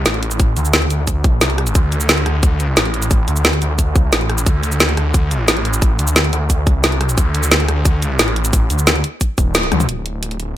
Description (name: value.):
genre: dark technical drum and bass.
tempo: 177 BPM.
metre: 4/4.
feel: straight.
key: unclear.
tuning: A4 = 441 Hz.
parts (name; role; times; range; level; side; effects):
snarling distorted saw bass; bass; 0.0-10.6 s; D1 to D2; -17 LUFS; equal; distortion, overdrive, sidechain pumping.
drum and bass drum kit; drums; 0.1-10.5 s; hi-hat, rim click, shaker, snare drum, toms; -16 LUFS; equal; none.
electronic kick drum; drums; 0.4-9.4 s; none; -15 LUFS; equal; none.
room: little or no reverb.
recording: none.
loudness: -13 LUFS.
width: side -13 dB against mid.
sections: 0.0-9.9 A section.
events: band accent 9.5; drum fill 9.7.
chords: none.